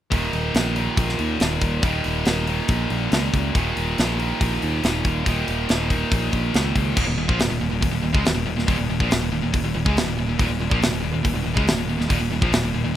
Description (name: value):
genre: heavy metal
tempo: 140 BPM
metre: 4/4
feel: straight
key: unclear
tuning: A4 = 440 Hz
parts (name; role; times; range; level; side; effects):
- distorted electric guitar; riff; 0.1-13.0 s; Eb2 to Ab3; -26 LUFS; right 9 dB; overdrive
- scooped high-gain guitar; riff; 0.1-13.0 s; Eb2 to Ab3; -26 LUFS; left 9 dB; distortion
- modern bright picked electric bass; bass; 0.1-12.9 s; Eb1 to Eb2; -25 LUFS; equal; none
- tight metal drum kit; drums; 0.1-12.6 s; crash cymbal, hi-hat, kick drum, snare drum; -23 LUFS; equal; none
room: little or no reverb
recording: rough home demo mix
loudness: -19 LUFS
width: side -11 dB against mid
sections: 0.1-7.0 A section; 7.0-13.0 B section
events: none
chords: 0.1 Eb5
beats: | 0.12 0.55 0.97 1.41 | 1.83 2.26 2.69 3.12 | 3.55 3.98 4.41 4.84 | 5.26 5.69 6.12 6.55 | 6.98 7.40 7.83 8.26 | 8.69 9.11 9.54 9.97 | 10.39 10.82 11.25 11.67 | 12.10 12.53